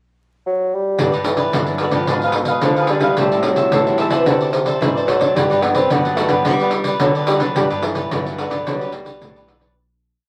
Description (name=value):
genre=samba and choro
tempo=109 BPM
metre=4/4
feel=straight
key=G major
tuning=A4 = 440 Hz
part: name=mellow bassoon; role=melody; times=0.5-9.5 s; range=B2 to C4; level=-22 LUFS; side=equal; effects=none
part: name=cavaquinho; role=accompaniment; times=1.0-9.7 s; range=D4 to A5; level=-25 LUFS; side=equal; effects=none
part: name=nylon-string guitar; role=accompaniment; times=1.0-9.7 s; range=G2 to B4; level=-26 LUFS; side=equal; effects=none
part: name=nylon-string guitar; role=bass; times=1.0-9.7 s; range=G2 to G3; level=-28 LUFS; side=equal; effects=none
part: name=pandeiro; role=percussion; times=1.0-9.8 s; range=none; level=-23 LUFS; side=equal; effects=none
room=wet club ambience, RT60 0.5 s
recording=vinyl crackle, faint mains hum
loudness=-18 LUFS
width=mono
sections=0.0-1.0 pickup bar; 1.0-9.8 A section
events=fade-out 7.6-9.8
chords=0.0 N.C.; 1.0 Gmaj7; 2.1 G#dim7; 3.2 Am7; 4.3 D6; 5.4 Gmaj7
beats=0.44 | 0.98 1.53 2.08 2.62 | 3.17 3.72 4.27 4.81 | 5.36 5.91 6.46 7.01 | 7.56 8.11 8.66 9.21